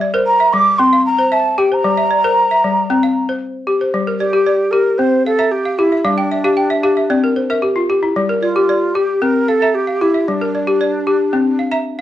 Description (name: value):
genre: west african traditional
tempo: 114 BPM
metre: 4/4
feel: straight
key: G dorian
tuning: A4 = 440 Hz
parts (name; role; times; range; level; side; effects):
- balafon; arpeggios; 0.0-12.0 s; G3 to Bb5; -15 LUFS; left 2 dB; cassette tape
- breathy mellow jazz flute; melody; 0.3-12.0 s; D4 to D6; -16 LUFS; right 2 dB; cassette tape
room: wet studio reverb, RT60 0.6 s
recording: home recording on cassette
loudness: -13 LUFS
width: side -12 dB against mid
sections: 0.0-3.9 A section; 3.9-12.0 B section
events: balafon fill 6.1-8.2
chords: 0.0 Gm; 0.8 C; 1.8 Gm; 2.9 C5; 3.9 Gm; 5.0 C; 6.1 G5; 7.1 C; 8.2 Gm; 9.2 C; 10.3 Gm; 11.3 C